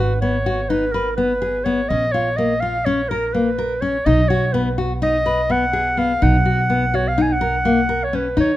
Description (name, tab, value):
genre	contemporary instrumental, chamber music in an uneven meter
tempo	250 BPM (eighths)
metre	9/8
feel	straight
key	G# dorian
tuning	A4 = 440 Hz
part	mellow clarinet	melody	0.0-8.6 s	A#4 to G#5	-20 LUFS	equal	none
part	nylon-string guitar	arpeggios	0.0-8.5 s	A#3 to B4	-21 LUFS	left 2 dB	none
part	upright bass	bass	0.0-8.6 s	G#1 to D#2	-22 LUFS	right 1 dB	none
room	light reverb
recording	close, detailed microphones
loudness	-16 LUFS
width	side -14 dB against mid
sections	0.0-8.6 A section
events	none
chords	0.0 G#m7; 1.9 A#m; 4.1 G#m7/B (rootless); 6.2 Bmaj7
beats	0.22 0.46 0.70 0.94 1.18 1.42 1.66 | 1.90 2.14 2.38 2.62 2.86 3.10 3.34 3.58 3.82 | 4.06 4.30 4.54 4.78 5.02 5.26 5.50 5.74 5.97 | 6.21 6.45 6.69 6.93 7.17 7.41 7.65 7.89 8.13 | 8.37